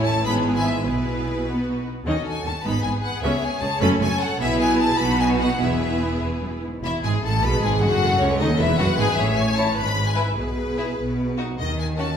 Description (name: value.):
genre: quick classical-period movement for string orchestra.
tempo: 101 BPM (dotted quarters).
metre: 6/8.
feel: rubato.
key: E major.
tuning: A4 = 442 Hz.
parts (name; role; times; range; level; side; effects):
rich studio violin section; second line; 0.0-12.1 s; C#4 to C#5; -28 LUFS; left 2 dB; none.
warm studio viola section; accompaniment; 0.0-11.3 s; A3 to C#5; -25 LUFS; equal; none.
warm studio cello section; bass; 0.0-12.1 s; C#2 to D#3; -26 LUFS; right 2 dB; none.
warm studio double bass section; bass; 0.0-12.1 s; E1 to D#2; -27 LUFS; right 2 dB; none.
rich studio violin section; melody; 0.1-12.2 s; B4 to B5; -26 LUFS; left 3 dB; none.
room: wet recital hall reverb, RT60 1.5 s.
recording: recorded in a church or concert hall.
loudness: -19 LUFS.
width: side -8 dB against mid.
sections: 0.0-6.8 A section; 6.8-12.2 A section.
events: none.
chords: 0.3 E/G#; 0.9 E/B; 1.5 B; 2.1 D#m7b5; 2.7 G#m; 3.2 C#5; 3.8 F#m; 4.4 E/B; 5.0 B; 5.6 E; 8.0 F#m6; 8.6 E; 9.2 A; 9.8 E/G#; 10.4 E/B (rootless); 11.6 D#(b5, no3).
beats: 0.25 | 0.85 1.46 | 2.06 2.65 | 3.23 3.81 | 4.40 4.99 | 5.60 6.22 | 6.83 7.43 | 8.02 8.60 | 9.18 9.77 | 10.37 10.97 | 11.58.